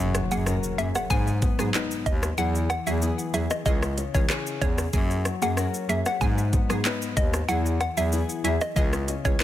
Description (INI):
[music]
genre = dancehall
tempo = 94 BPM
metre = 4/4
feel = straight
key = G# minor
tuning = A4 = 439 Hz
[part]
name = wavetable chord stab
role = accompaniment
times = 0.0-9.4 s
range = E3 to G#4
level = -32 LUFS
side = right 3 dB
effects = none
[part]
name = nylon-string guitar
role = arpeggios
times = 0.0-9.4 s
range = G#2 to B4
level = -32 LUFS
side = left 6 dB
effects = none
[part]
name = warm bass clarinet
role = bass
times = 0.0-9.4 s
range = C#2 to G#2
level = -27 LUFS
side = equal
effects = none
[part]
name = island pop drum kit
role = drums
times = 0.0-9.4 s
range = handclaps, hi-hat, kick drum, rim click, shaker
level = -27 LUFS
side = equal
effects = overdrive, soft clipping on snare
[part]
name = impact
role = sound effects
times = 0.0-2.4 s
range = none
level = -35 LUFS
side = equal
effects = none
[part]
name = bongos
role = percussion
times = 0.1-9.4 s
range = none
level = -40 LUFS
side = right 3 dB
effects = none
[part]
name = hollow square pluck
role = melody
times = 0.3-9.4 s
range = C#5 to G#5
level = -30 LUFS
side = left 1 dB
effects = chorus, ping-pong delay
[sound]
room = little or no reverb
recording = dense, heavily limited modern master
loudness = -22 LUFS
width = side -12 dB against mid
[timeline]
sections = 0.0-9.4 A section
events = impact 0.0-2.4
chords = 0.0 F#add9; 1.1 G#m7; 2.4 Eadd9; 3.7 C#m; 4.9 F#add9; 6.2 G#m7; 7.5 Eadd9; 8.8 C#m